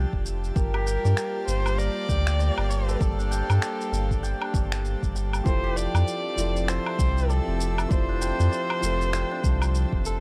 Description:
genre	organic downtempo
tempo	98 BPM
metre	4/4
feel	swing 60% on 16ths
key	unclear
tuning	A4 = 440 Hz
part	airy breathy pad	sustained chords	0.0-10.2 s	F3 to E6	-37 LUFS	equal	chorus, sidechain pumping
part	santur	arpeggios	0.0-10.2 s	D4 to G5	-38 LUFS	equal	dub echo
part	warm sub bass	bass	0.0-10.2 s	F1 to G2	-27 LUFS	equal	sidechain pumping
part	electronic kick drum	drums	0.1-10.0 s	none	-28 LUFS	equal	none
part	electronic shaker, woodblock and finger snaps	drums	0.3-10.2 s	none	-35 LUFS	equal	none
part	dark kamancheh	melody	0.6-10.2 s	A4 to D5	-33 LUFS	equal	dub echo
part	felt-muted upright piano	accompaniment	5.4-10.2 s	F3 to A4	-36 LUFS	equal	sidechain pumping, dub echo
room	studio reverb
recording	echo-heavy mix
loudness	-25 LUFS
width	mono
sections	0.0-5.5 A section; 5.5-10.2 B section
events	none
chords	0.0 Fmaj7; 0.6 Gm11; 5.5 Fmaj7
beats	| 0.56 1.17 1.78 2.40 | 3.01 3.62 4.23 4.84 | 5.46 6.07 6.68 7.29 | 7.91 8.52 9.13 9.74

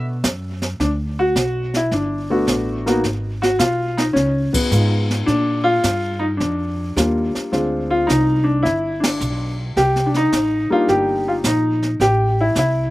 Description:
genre	jazz piano trio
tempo	107 BPM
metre	4/4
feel	swing 69% on 8ths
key	unclear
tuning	A4 = 440 Hz
part	warm baby grand piano	melody	0.0-12.9 s	G3 to G4	-18 LUFS	left 1 dB	none
part	upright bass	bass	0.0-12.9 s	G1 to B2	-22 LUFS	equal	none
part	jazz brush drum kit	drums	0.2-12.9 s	brushed snare drum, hi-hat, kick drum, ride cymbal, snare drum	-24 LUFS	equal	none
room	little or no reverb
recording	recorded outdoors, with no room sound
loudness	-16 LUFS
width	side -17 dB against mid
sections	0.8-12.9 A section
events	band accent 4.4, 8.9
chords	0.0 Gmaj7 (rootless); 0.8 Gmaj7; 3.0 Abm; 4.2 C#9; 5.3 Ebmaj7; 7.5 Dm7b5; 8.6 G; 9.8 Cm7; 12.0 Am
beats	0.25 | 0.81 1.36 1.92 2.48 | 3.04 3.60 4.17 4.73 | 5.29 5.85 6.41 6.97 | 7.53 8.09 8.65 9.21 | 9.76 10.32 10.88 11.44 | 11.99 12.55

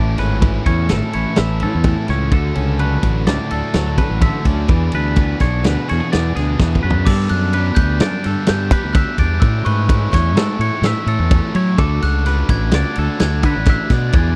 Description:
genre	math rock and midwest emo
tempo	127 BPM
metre	5/4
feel	straight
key	A major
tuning	A4 = 438 Hz
part	clean electric guitar	accompaniment	0.0-7.1 s	A2 to G#4	-27 LUFS	equal	none
part	twangy electric guitar	arpeggios	0.0-14.4 s	G#4 to E5	-28 LUFS	equal	none
part	biting overdriven guitar	riff	0.0-14.4 s	G2 to A4	-28 LUFS	equal	none
part	fuzz fingered electric bass	bass	0.0-14.3 s	G#1 to G3	-20 LUFS	equal	overdrive
part	loose indie drum kit	drums	0.2-14.2 s	crash cymbal, kick drum, ride cymbal, snare drum, toms	-19 LUFS	equal	none
part	glockenspiel with hard plastic mallets	melody	7.1-14.4 s	C#6 to A6	-27 LUFS	equal	none
room	little or no reverb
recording	dry, close 1970s-style studio recording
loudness	-17 LUFS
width	mono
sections	0.0-7.1 A section; 7.1-14.4 B section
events	drum fill 6.6-7.1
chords	0.0 Amaj7; 2.3 Dmaj7; 4.7 E7; 7.1 Gmaj7; 9.4 Amaj7; 11.8 Dmaj7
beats	0.42 0.89 1.37 1.84 | 2.32 2.79 3.27 3.74 4.22 | 4.69 5.17 5.64 6.12 6.59 | 7.06 7.54 8.01 8.48 8.95 | 9.43 9.90 10.37 10.84 11.31 | 11.79 12.26 12.73 13.20 13.67 | 14.14

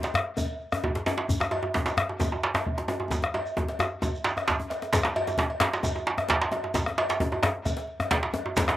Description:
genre	west african traditional, West African drum ensemble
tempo	132 BPM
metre	4/4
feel	straight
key	none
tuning	none
part	bombo	percussion	0.0-8.8 s	none	-29 LUFS	left 1 dB	none
part	cowbell	percussion	0.0-8.4 s	none	-33 LUFS	equal	slapback echo
part	djembe	percussion	0.0-8.8 s	none	-32 LUFS	left 3 dB	none
part	djembe	percussion	0.0-8.8 s	none	-28 LUFS	right 2 dB	none
part	shekere	percussion	0.0-8.7 s	none	-39 LUFS	equal	none
room	little or no reverb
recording	recorded outdoors, with no room sound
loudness	-25 LUFS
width	side -14 dB against mid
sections	0.0-4.9 A section; 4.9-8.8 B section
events	drum fill 3.1-4.9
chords	none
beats	0.38 0.84 | 1.29 1.75 2.20 2.66 | 3.12 3.57 4.03 4.48 | 4.93 5.39 5.84 6.30 | 6.75 7.20 7.66 8.11 | 8.56

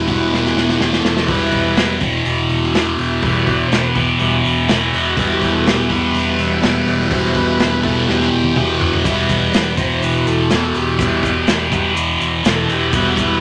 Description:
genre	psychedelic rock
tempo	124 BPM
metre	4/4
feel	straight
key	E minor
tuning	A4 = 439 Hz
part	overdriven combo organ	sustained chords	0.0-13.4 s	G3 to E5	-24 LUFS	equal	none
part	thick fuzz guitar	riff	0.0-13.4 s	E2 to E3	-18 LUFS	equal	distortion, phaser
part	deep dub picked electric bass	bass	0.0-13.4 s	E1	-27 LUFS	equal	none
part	crunchy breakbeat drum kit	drums	0.1-13.3 s	hi-hat, kick drum, snare drum, toms	-23 LUFS	equal	none
part	maracas	percussion	9.1-13.3 s	none	-38 LUFS	equal	none
room	moderate studio ambience, RT60 0.4 s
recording	none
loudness	-16 LUFS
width	mono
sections	0.0-13.4 A section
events	transistor combo organ solo 0.0-13.4; drum fill 0.3-1.3, 8.1-9.1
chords	0.0 Em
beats	0.32 0.80 | 1.29 1.77 2.26 2.74 | 3.23 3.71 4.20 4.69 | 5.17 5.66 6.14 6.63 | 7.11 7.60 8.08 8.57 | 9.05 9.54 10.02 10.51 | 10.99 11.47 11.96 12.44 | 12.93

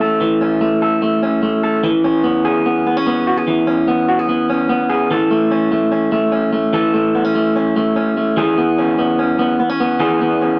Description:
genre	indie pop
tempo	147 BPM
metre	4/4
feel	straight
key	unclear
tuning	A4 = 438 Hz
part	electric guitar through a small old amp	solo	0.0-10.6 s	E3 to A4	-16 LUFS	equal	none
room	wet studio reverb, RT60 0.6 s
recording	none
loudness	-16 LUFS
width	mono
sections	0.0-5.1 A section; 5.1-10.6 B section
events	none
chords	0.0 A/E; 1.8 C#m7; 5.1 A/E; 8.4 C#m7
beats	| 0.21 0.62 1.03 1.44 | 1.84 2.25 2.66 3.07 | 3.48 3.89 4.29 4.70 | 5.11 5.52 5.93 6.34 | 6.74 7.15 7.56 7.97 | 8.38 8.78 9.19 9.60 | 10.01 10.41

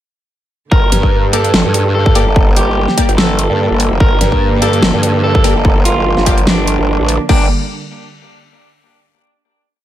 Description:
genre	heavy wobble dubstep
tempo	146 BPM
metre	4/4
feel	swing 55% on 16ths, half-time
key	G minor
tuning	A4 = 440 Hz
part	electric guitar at the edge of break-up	melody	0.7-7.4 s	D4 to Bb4	-18 LUFS	right 1 dB	tape echo
part	warm studio string section	sustained chords	0.7-7.5 s	D3 to Bb3	-21 LUFS	right 2 dB	sidechain pumping
part	growl bass	bass	0.7-7.5 s	F1 to G2	-15 LUFS	equal	chorus, overdrive
part	electronic kick drum	drums	0.7-7.4 s	none	-12 LUFS	equal	overdrive
part	dubstep drum kit	drums	0.9-7.4 s	crash cymbal, hi-hat, snare drum	-16 LUFS	equal	none
part	orchestra-hit-like synth stab	stabs	1.3-7.4 s	Bb3 to D5	-21 LUFS	left 5 dB	built-in reverb, tape echo
room	little or no reverb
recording	none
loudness	-10 LUFS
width	side -12 dB against mid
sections	0.7-7.3 drop; 7.3-8.9 final chord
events	drop 0.7-7.3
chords	0.7 Gm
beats	| 0.71 1.13 1.54 1.95 | 2.36 2.77 3.18 3.59 | 4.00 4.41 4.83 5.24 | 5.65 6.06 6.47 6.88 | 7.29

